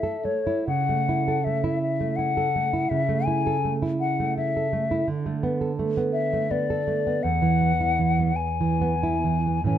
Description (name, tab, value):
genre	romantic duo for flute and classical guitar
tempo	46-58 BPM (dotted quarters)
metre	12/8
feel	rubato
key	A major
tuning	A4 = 440 Hz
part	hollow concert flute	melody	0.0-9.8 s	C#5 to G#5	-26 LUFS	left 7 dB	none
part	nylon-string guitar	accompaniment	0.0-9.8 s	E2 to A4	-24 LUFS	right 4 dB	none
room	light reverb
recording	close, detailed microphones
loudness	-22 LUFS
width	side -10 dB against mid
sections	0.0-9.8 A section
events	none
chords	0.0 A; 0.7 A/C#; 5.1 Bm7/D; 7.2 E